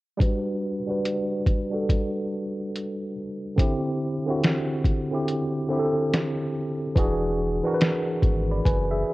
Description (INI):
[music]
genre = lo-fi hip hop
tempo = 71 BPM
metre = 4/4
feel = swing 64% on 16ths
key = unclear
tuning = A4 = 443 Hz
[part]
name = tine electric piano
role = accompaniment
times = 0.2-9.1 s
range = D3 to B5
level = -25 LUFS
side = equal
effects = overdrive, fast stereo tremolo, cassette tape, low-pass filter
[part]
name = lo-fi sampler-style drum kit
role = drums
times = 0.2-8.9 s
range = hi-hat, kick drum, snare drum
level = -22 LUFS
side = equal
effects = none
[part]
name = soft dub sub bass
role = bass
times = 7.0-9.0 s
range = E1 to G#1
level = -28 LUFS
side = equal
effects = none
[sound]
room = light reverb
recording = worn, warbling old tape, cassette tape, warbly pitch drift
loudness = -23 LUFS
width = side -19 dB against mid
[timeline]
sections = 0.2-9.1 A section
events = filter sweep on tine electric piano 0.2-9.1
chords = 0.2 Gmaj7; 3.6 D9sus4; 7.0 E9